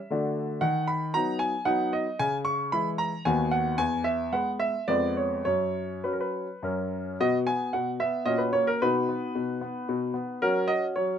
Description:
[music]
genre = classical-period piano sonatina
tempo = 102-116 BPM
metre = 3/4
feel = rubato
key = B major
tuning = A4 = 442 Hz
[part]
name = clear grand piano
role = solo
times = 0.0-11.2 s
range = D#2 to C#6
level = -25 LUFS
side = equal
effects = none
[sound]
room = light reverb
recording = close, detailed microphones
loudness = -25 LUFS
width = side -8 dB against mid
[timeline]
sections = 0.0-7.2 A section; 7.2-11.2 B section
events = none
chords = 0.1 D; 0.6 B/D#; 2.2 C#m; 3.3 B/D#; 3.8 E; 4.9 Fdim7; 5.5 F#5; 6.6 F#; 7.2 B5; 8.3 F#/A#; 8.8 B; 10.4 F#5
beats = 0.10 | 0.62 1.14 1.66 | 2.19 2.72 3.25 | 3.79 4.33 4.89 | 5.46 6.05 6.62 | 7.18 7.73 8.27 | 8.81 9.35 9.88 | 10.41 10.95

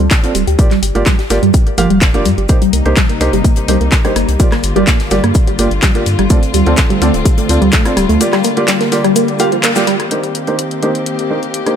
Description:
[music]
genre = progressive house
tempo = 126 BPM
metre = 4/4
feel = straight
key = G minor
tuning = A4 = 440 Hz
[part]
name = tight sequenced synth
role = arpeggios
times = 0.0-10.0 s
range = F3 to G4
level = -16 LUFS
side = equal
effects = chorus, phaser, sidechain pumping, ping-pong delay
[part]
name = round analog bass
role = bass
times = 0.0-8.2 s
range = D1 to G2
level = -16 LUFS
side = equal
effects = sidechain pumping
[part]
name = house drum kit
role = drums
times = 0.0-11.8 s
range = handclaps, hi-hat, rim click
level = -19 LUFS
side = left 1 dB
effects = none
[part]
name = crisp fusion drum kit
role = drums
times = 0.1-9.9 s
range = hi-hat, shaker, snare drum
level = -27 LUFS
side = left 4 dB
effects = sidechain pumping on hats, high-pass filter on hats, high-pass filter on snare, sidechain pumping on perc, high-pass filter on perc, high-pass filter on room
[part]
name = electronic kick drum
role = drums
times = 0.1-7.8 s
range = none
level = -12 LUFS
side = equal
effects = none
[part]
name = felt-muted upright piano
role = stabs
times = 0.2-11.7 s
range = Bb3 to F5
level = -18 LUFS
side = right 2 dB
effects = sidechain pumping, low-pass filter, ping-pong delay
[part]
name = dark chamber string section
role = sustained chords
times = 2.5-11.8 s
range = C3 to G4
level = -20 LUFS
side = left 2 dB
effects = sidechain pumping
[sound]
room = light reverb, studio ambience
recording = none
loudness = -10 LUFS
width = side -8 dB against mid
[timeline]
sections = 0.0-10.1 A section; 10.1-11.8 B section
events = filter sweep on synth arpeggio sound 0.0-10.1; band accent 9.6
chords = 0.0 N.C.; 0.6 Gm7; 2.5 Cm7; 4.4 Gm7; 6.3 Dm7; 8.2 Gm7; 10.1 Cm7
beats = 0.11 | 0.59 1.06 1.54 2.02 | 2.49 2.97 3.44 3.92 | 4.40 4.87 5.35 5.83 | 6.30 6.78 7.25 7.73 | 8.21 8.68 9.16 9.63 | 10.11 10.59 11.06 11.54

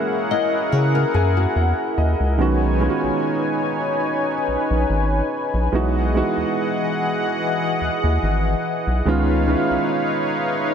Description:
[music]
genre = contemporary R&B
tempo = 72 BPM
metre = 4/4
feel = swing 54% on 16ths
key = B major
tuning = A4 = 441 Hz
[part]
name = warm concert grand piano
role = accompaniment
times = 0.0-10.7 s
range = D#3 to G#5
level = -23 LUFS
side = right 3 dB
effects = none
[part]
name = warm analog pad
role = sustained chords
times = 0.0-10.7 s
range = E3 to G#5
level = -22 LUFS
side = left 2 dB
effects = chorus, tremolo
[part]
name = flamenco guitar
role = arpeggios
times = 0.3-2.4 s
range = F#4 to D#5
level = -25 LUFS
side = left 7 dB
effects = wide subtle chorus, tape echo
[part]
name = rubbery square bass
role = bass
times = 0.7-9.8 s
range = G#1 to C#3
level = -20 LUFS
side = equal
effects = none
[sound]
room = moderate lush hall reverb, RT60 1.9 s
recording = dreamy mix soaked in reverb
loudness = -18 LUFS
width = side -7 dB against mid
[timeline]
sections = 0.0-10.7 A section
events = grand piano fill 0.7-2.4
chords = 0.0 F#9; 2.4 B69; 5.7 Emaj9/B; 9.1 C#9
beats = 0.73 1.56 | 2.39 3.23 4.06 4.89 | 5.73 6.56 7.39 8.23 | 9.06 9.89 10.73

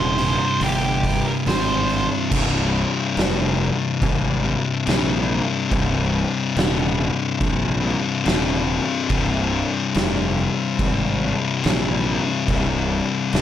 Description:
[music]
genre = stoner and doom metal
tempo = 71 BPM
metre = 4/4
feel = straight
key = C minor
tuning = A4 = 440 Hz
[part]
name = octave-fuzz lead guitar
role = melody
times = 0.0-2.1 s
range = G4 to C5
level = -24 LUFS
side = right 3 dB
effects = distortion
[part]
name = thick fuzz guitar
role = riff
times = 0.0-13.4 s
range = C2 to C3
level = -21 LUFS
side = left 5 dB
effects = distortion
[part]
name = thick fuzz guitar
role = riff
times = 0.0-2.3 s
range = C2 to C3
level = -27 LUFS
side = right 10 dB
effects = distortion
[part]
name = fuzz fingered electric bass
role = bass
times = 0.0-13.4 s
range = C1 to Bb1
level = -24 LUFS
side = right 1 dB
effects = overdrive
[part]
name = oversized low-tuned drum kit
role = drums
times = 0.2-13.4 s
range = crash cymbal, hi-hat, kick drum, snare drum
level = -26 LUFS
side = right 1 dB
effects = none
[sound]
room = studio reverb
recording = none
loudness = -18 LUFS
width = side -10 dB against mid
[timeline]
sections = 0.0-2.3 A section; 2.3-13.4 B section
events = none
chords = 0.0 Cm; 2.3 C5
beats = 0.61 1.46 | 2.31 3.17 4.02 4.87 | 5.72 6.57 7.41 8.26 | 9.11 9.95 10.80 11.64 | 12.48 13.33

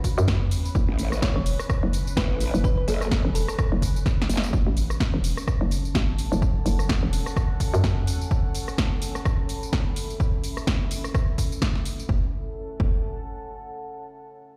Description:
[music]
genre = bass house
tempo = 127 BPM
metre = 4/4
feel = swing 57% on 16ths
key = F# minor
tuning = A4 = 441 Hz
[part]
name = thumb-piano-like synth pluck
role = melody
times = 0.0-3.5 s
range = F#4 to C#5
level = -36 LUFS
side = equal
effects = chorus, digital delay
[part]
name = dark analog pad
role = sustained chords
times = 0.1-4.5 s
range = none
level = barely audible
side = none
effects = none
[part]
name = electronic kick drum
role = drums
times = 0.0-12.9 s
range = none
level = -27 LUFS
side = equal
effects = none
[part]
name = house drum kit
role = drums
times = 0.0-12.1 s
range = hi-hat, rim click, snare drum, tambourine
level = -33 LUFS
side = equal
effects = none
[part]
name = deep dark ambient pad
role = texture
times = 0.0-13.9 s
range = C#4 to B5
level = -40 LUFS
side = equal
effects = chorus, built-in reverb, sidechain pumping
[part]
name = hollow knocking FM bass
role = bass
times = 0.2-8.2, 12.1-13.0 s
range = E1 to F#2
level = -27 LUFS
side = equal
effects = sidechain pumping
[part]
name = growl bass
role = bass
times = 0.9-4.5 s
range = F#1 to A1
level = -28 LUFS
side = equal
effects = chorus, overdrive, sidechain pumping
[sound]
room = digital ambience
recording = played on a big sound system in a bare room, large studio reverb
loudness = -25 LUFS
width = mono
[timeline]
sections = 0.0-4.5 A section; 4.5-12.1 B section; 12.1-14.0 C section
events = drop 0.0-4.5; drum fill 4.1-4.5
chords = 0.0 F#m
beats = 0.28 | 0.75 1.22 1.70 2.17 | 2.64 3.11 3.58 4.06 | 4.53 5.00 5.47 5.95 | 6.42 6.89 7.37 7.84 | 8.31 8.78 9.26 9.73 | 10.20 10.67 11.14 11.62 | 12.09 12.56 13.03 13.51

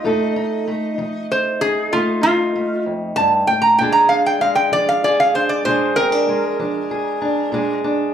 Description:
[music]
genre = blues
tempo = 64 BPM (dotted quarters)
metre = 12/8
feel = straight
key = unclear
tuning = A4 = 440 Hz
[part]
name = lap resonator guitar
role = melody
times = 0.0-7.8 s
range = F4 to Bb5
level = -16 LUFS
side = right 1 dB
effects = none
[part]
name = fingerpicked steel-string acoustic guitar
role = accompaniment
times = 0.0-8.1 s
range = F2 to A4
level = -20 LUFS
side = equal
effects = none
[sound]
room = wet large studio reverb, RT60 0.8 s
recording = band playing live in one room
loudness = -15 LUFS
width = side -9 dB against mid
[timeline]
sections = 0.0-8.1 A section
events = resonator guitar played with a steel bar solo 0.0-8.1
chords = 0.0 F7; 3.8 Bb7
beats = | 0.06 0.99 1.92 2.86 | 3.79 4.72 5.65 6.59 | 7.52

